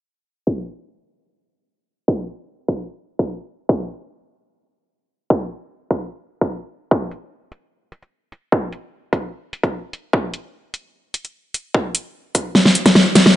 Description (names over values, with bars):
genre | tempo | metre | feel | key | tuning
heavy wobble dubstep | 149 BPM | 4/4 | half-time | none | none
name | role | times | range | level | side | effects
electronic kick drum | drums | 0.5-12.9 s | none | -19 LUFS | equal | high-pass filter on kick, high-pass filter on room
dubstep drum kit | drums | 7.1-13.3 s | hi-hat, snare drum | -11 LUFS | equal | none
room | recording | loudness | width
light reverb | low-pass filter, nothing above 10.6 kHz | -18 LUFS | side -13 dB against mid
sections
0.5-13.4 A section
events
filter sweep 0.5-13.4; drum fill 12.6-13.4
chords
none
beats
| 0.47 0.87 1.27 1.68 | 2.08 2.48 2.89 3.29 | 3.69 4.09 4.50 4.90 | 5.30 5.71 6.11 6.51 | 6.91 7.32 7.72 8.12 | 8.52 8.93 9.33 9.73 | 10.13 10.54 10.94 11.34 | 11.74 12.15 12.55 12.95